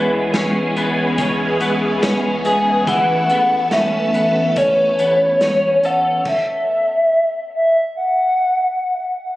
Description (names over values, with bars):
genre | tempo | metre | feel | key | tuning
dream pop | 71 BPM | 4/4 | straight | unclear | A4 = 440 Hz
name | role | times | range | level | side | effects
phased string machine | sustained chords | 0.0-6.2 s | E3 to A4 | -21 LUFS | equal | ensemble chorus, phaser
twelve-string electric guitar | arpeggios | 0.0-6.8 s | E3 to A4 | -22 LUFS | left 1 dB | ensemble chorus, ping-pong delay
round analog bass | bass | 0.0-6.2 s | A1 to C#2 | -27 LUFS | equal | none
vintage drum kit | drums | 0.3-6.5 s | crash cymbal, hi-hat, kick drum, snare drum | -24 LUFS | equal | none
hollow clarinet-like synth lead | melody | 2.5-9.2 s | C#5 to G#5 | -15 LUFS | equal | chorus, ping-pong delay
room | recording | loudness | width
moderate concert hall reverb, RT60 2.0 s | recorded on a phone in the room, compression | -14 LUFS | side -17 dB against mid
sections
0.0-9.4 A section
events
stop 6.3-9.4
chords
0.0 C#m7; 2.9 Aadd9; 6.3 N.C.